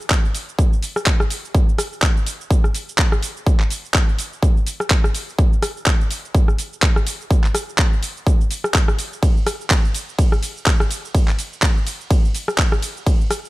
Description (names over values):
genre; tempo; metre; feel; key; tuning
house; 125 BPM; 4/4; swing 57% on 16ths; none; none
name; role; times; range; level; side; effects
garage drum kit; drums; 0.0-13.5 s; cabasa, handclaps, hi-hat, ride cymbal, rim click; -22 LUFS; equal; none
electronic kick drum; drums; 0.1-13.2 s; none; -16 LUFS; equal; none
room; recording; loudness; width
little or no reverb; none; -16 LUFS; side -19 dB against mid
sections
0.0-13.5 A section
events
none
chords
none